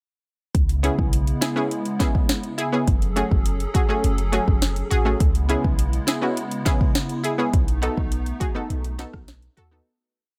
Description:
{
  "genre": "dancehall",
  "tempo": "103 BPM",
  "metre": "4/4",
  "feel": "straight",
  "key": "C# minor",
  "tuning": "A4 = 439 Hz",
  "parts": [
    { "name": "hollow soft pad", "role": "sustained chords", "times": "0.5-9.8 s", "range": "C#3 to A4", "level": "-32 LUFS", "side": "equal", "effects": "ensemble chorus, sidechain pumping" },
    { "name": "clean 808-style bass", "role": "bass", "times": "0.5-9.8 s", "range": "F#1 to D#2", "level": "-26 LUFS", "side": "equal", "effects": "none" },
    { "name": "afro-pop drum kit", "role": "drums", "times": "0.5-9.7 s", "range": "hi-hat, kick drum, rim click, snare drum", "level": "-24 LUFS", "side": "equal", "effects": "none" },
    { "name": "analog pluck", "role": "accompaniment", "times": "0.8-9.8 s", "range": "A3 to A4", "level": "-28 LUFS", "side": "equal", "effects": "chorus" }
  ],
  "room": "little or no reverb",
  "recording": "none",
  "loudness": "-22 LUFS",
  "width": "mono",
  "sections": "0.5-9.9 verse",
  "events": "fade-out 7.5-9.9",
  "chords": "0.5 C#m7; 2.9 F#madd9; 5.2 C#m7; 7.5 B7"
}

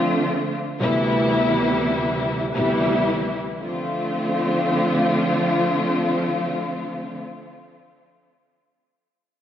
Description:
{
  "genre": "hip hop",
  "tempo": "free time",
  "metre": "none",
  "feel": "none",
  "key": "D dorian",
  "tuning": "A4 = 436 Hz",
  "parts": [
    { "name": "dark studio string section", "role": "accompaniment", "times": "0.0-7.2 s", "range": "D2 to F4", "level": "-20 LUFS", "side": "equal", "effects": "high-pass filter, low-pass filter, tape echo" }
  ],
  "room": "light reverb",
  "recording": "echo-heavy mix",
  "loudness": "-19 LUFS",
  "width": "side -10 dB against mid",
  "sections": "0.0-3.6 A section; 3.6-6.4 B section",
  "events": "none",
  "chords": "0.0 Dm7; 0.8 Cmaj7/D; 3.6 Dm7"
}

